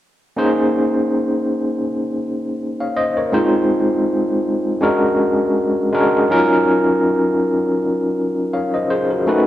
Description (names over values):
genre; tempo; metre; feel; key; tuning
soul; 81 BPM; 4/4; swing 54% on 16ths; Bb minor; A4 = 440 Hz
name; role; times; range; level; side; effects
overdriven tine electric piano; solo; 0.4-9.5 s; Gb3 to F5; -15 LUFS; equal; fast tremolo
room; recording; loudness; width
wet large studio reverb, RT60 1.2 s; band playing live in one room; -15 LUFS; side -13 dB against mid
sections
0.4-9.5 A section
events
none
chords
0.4 Bbm11; 3.3 Fm7; 4.8 Bb7alt; 6.3 Ebm9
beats
| 0.38 1.12 1.86 2.60 | 3.35 4.09 4.83 5.57 | 6.31 7.05 7.79 8.53 | 9.28